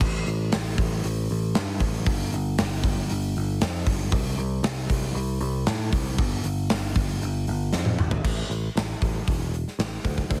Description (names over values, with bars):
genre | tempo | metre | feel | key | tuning
hard rock | 117 BPM | 4/4 | straight | unclear | A4 = 439 Hz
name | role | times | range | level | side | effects
picked electric bass | bass | 0.0-10.4 s | E1 to A2 | -29 LUFS | equal | none
gated 80s drum kit | drums | 0.0-10.4 s | crash cymbal, hi-hat, kick drum, snare drum, toms | -29 LUFS | equal | none
room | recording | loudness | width
little or no reverb | heavily compressed radio sound | -26 LUFS | mono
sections
0.0-8.2 A section; 8.2-10.4 B section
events
drum fill 7.7-8.2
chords
none